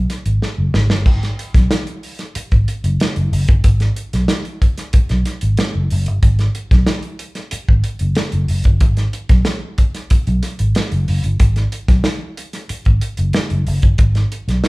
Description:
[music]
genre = funk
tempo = 93 BPM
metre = 4/4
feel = straight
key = unclear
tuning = A4 = 440 Hz
[part]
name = vintage muted fingered electric bass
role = bass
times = 0.0-14.6 s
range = F#1 to B1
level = -17 LUFS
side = equal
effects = none
[part]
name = warm soul drum kit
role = drums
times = 0.1-14.7 s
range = hi-hat, kick drum, snare drum, splash cymbal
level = -16 LUFS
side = equal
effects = none
[sound]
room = moderate large studio reverb, RT60 0.9 s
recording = band playing live in one room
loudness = -14 LUFS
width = side -23 dB against mid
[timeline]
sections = 0.0-11.4 A section; 11.4-14.7 A section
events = drum fill 0.4-1.1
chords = none

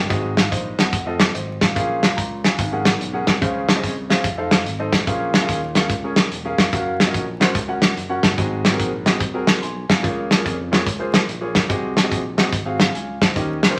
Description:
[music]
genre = uptempo gospel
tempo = 145 BPM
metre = 4/4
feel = swing 65% on 8ths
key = unclear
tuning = A4 = 439 Hz
[part]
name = clear grand piano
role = accompaniment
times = 0.0-13.8 s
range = Ab2 to C6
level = -26 LUFS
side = equal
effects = none
[part]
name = modern bright fingered electric bass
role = bass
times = 0.0-13.7 s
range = Fb1 to F2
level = -32 LUFS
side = equal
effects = none
[part]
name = warm soul drum kit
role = drums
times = 0.1-13.7 s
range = hi-hat, kick drum, snare drum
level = -20 LUFS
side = equal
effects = none
[sound]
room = moderate studio reverb, RT60 0.8 s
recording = vinyl crackle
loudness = -19 LUFS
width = mono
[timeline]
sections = 0.0-13.8 A section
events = none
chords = 0.1 Ab7; 0.9 F7; 1.8 Bbm7; 2.6 Ab9sus4; 3.4 Dbmaj7; 4.2 F7; 5.1 Bbm7; 6.7 Gbmaj7; 8.4 Ab7; 10.0 Db6; 11.7 Ab7

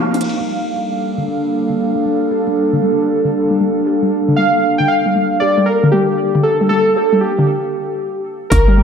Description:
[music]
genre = IDM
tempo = 116 BPM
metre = 4/4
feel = swing 62% on 16ths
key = G minor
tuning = A4 = 440 Hz
[part]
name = warbly tape-like pad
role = sustained chords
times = 0.0-7.5 s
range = F3 to F5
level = -17 LUFS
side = right 1 dB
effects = chorus, built-in reverb, sidechain pumping
[part]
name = warbly dusty pluck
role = arpeggios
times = 0.0-8.8 s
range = D3 to G4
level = -19 LUFS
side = left 1 dB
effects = ensemble chorus, diffuse ambient delay
[part]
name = electro analog drum machine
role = drums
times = 0.1-0.4, 8.5-8.6 s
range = crash cymbal, hi-hat, rim click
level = -24 LUFS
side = equal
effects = low-pass filter on snare, low-pass filter on hats, low-pass filter on cymbals, analog delay
[part]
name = warbly lo-fi synth keys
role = melody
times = 4.4-8.8 s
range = G4 to G5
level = -15 LUFS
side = equal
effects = chorus, analog delay
[part]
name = woody FM bass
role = bass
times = 8.5-8.8 s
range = G1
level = -11 LUFS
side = equal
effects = tube saturation
[part]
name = electronic kick drum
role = drums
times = 8.5-8.6 s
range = none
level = -16 LUFS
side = equal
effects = overdrive
[sound]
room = wet plate reverb, RT60 1.6 s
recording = dreamy mix soaked in reverb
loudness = -13 LUFS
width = side -7 dB against mid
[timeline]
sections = 0.2-8.5 A section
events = break 0.0, 7.5-8.5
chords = 0.2 Gm9

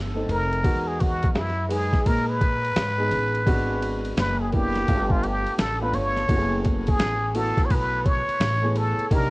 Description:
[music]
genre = hip hop, jazz-hop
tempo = 85 BPM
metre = 4/4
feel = swing 64% on 16ths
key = unclear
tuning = A4 = 439 Hz
[part]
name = upright bass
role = bass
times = 0.0-9.3 s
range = F1 to A#2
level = -27 LUFS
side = equal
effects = none
[part]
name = dark upright piano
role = accompaniment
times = 0.1-9.3 s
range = G#3 to B4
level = -29 LUFS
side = equal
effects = none
[part]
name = trumpet with plunger mute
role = melody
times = 0.3-9.3 s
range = E4 to C#5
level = -26 LUFS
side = equal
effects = cassette tape, tape echo
[part]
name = boom bap sampler-style drum kit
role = drums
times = 0.3-9.3 s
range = hi-hat, kick drum, ride cymbal, snare drum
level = -25 LUFS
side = equal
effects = cassette tape
[sound]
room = small room reverb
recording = home recording on cassette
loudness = -21 LUFS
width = side -23 dB against mid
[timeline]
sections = 0.0-9.3 A section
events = muted trumpet solo 0.0-9.3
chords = 0.0 F9; 0.6 Emaj9; 3.5 G#m7b5; 4.9 G9; 6.3 F#m11

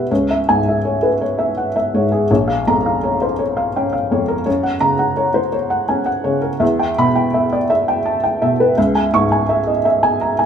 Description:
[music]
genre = neoclassical minimalist piano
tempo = 56 BPM (dotted quarters)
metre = 6/8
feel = rubato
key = unclear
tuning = A4 = 440 Hz
[part]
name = felt-muted upright piano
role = solo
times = 0.0-10.5 s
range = A#1 to C#6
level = -14 LUFS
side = equal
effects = none
[sound]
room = wet studio reverb, RT60 0.7 s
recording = band playing live in one room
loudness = -14 LUFS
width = side -8 dB against mid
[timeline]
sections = 0.0-10.5 A section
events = none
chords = 0.1 C#m; 2.3 A#m; 4.5 F#; 6.6 Em; 8.8 C#m

